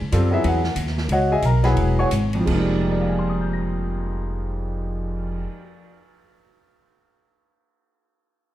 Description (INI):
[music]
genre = modal jazz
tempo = 163-191 BPM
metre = 4/4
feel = swing 62% on 8ths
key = F dorian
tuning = A4 = 440 Hz
[part]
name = upright bass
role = bass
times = 0.0-5.4 s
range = Fb1 to Gb2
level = -22 LUFS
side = equal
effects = none
[part]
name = clear upright piano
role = accompaniment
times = 0.1-6.5 s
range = F2 to Bb6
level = -22 LUFS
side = equal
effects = none
[part]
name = swinging big-band drum kit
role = drums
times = 0.1-5.3 s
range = crash cymbal, cymbal swell, hi-hat, kick drum, ride cymbal, snare drum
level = -32 LUFS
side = right 1 dB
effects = none
[sound]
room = light reverb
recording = dark, warm production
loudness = -19 LUFS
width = side -13 dB against mid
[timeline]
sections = 0.0-2.5 A section; 2.5-5.4 B section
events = slowing down 0.0-2.5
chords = 0.0 Dbm11; 2.5 Fm11